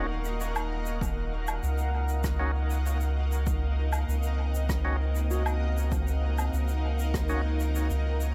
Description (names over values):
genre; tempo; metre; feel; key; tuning
ambient dub; 98 BPM; 4/4; straight; Eb dorian; A4 = 441 Hz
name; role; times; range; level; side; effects
granular cloud pad; sustained chords; 0.0-8.3 s; Eb4 to Gb5; -38 LUFS; equal; built-in reverb
felt-muted upright piano; arpeggios; 0.0-8.3 s; Gb4 to Db6; -47 LUFS; equal; dub echo
overdriven tonewheel organ; stabs; 0.0-7.4 s; Db4 to Gb4; -41 LUFS; equal; dub echo
soft dub sub bass; bass; 0.0-8.3 s; Eb1 to Db2; -30 LUFS; equal; none
wind-like tuned noise texture; texture; 0.0-8.3 s; Bb3 to Bb4; -44 LUFS; equal; built-in reverb
shaker, woodblock and rim click; drums; 0.2-8.3 s; none; -40 LUFS; equal; dub echo
electronic kick drum; drums; 1.0-7.3 s; none; -36 LUFS; equal; overdrive
room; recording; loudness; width
little or no reverb; none; -28 LUFS; mono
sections
0.0-8.3 A section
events
none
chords
0.0 Ebm7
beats
0.40 | 1.02 1.63 2.24 2.85 | 3.47 4.08 4.69 5.30 | 5.92 6.53 7.14 7.75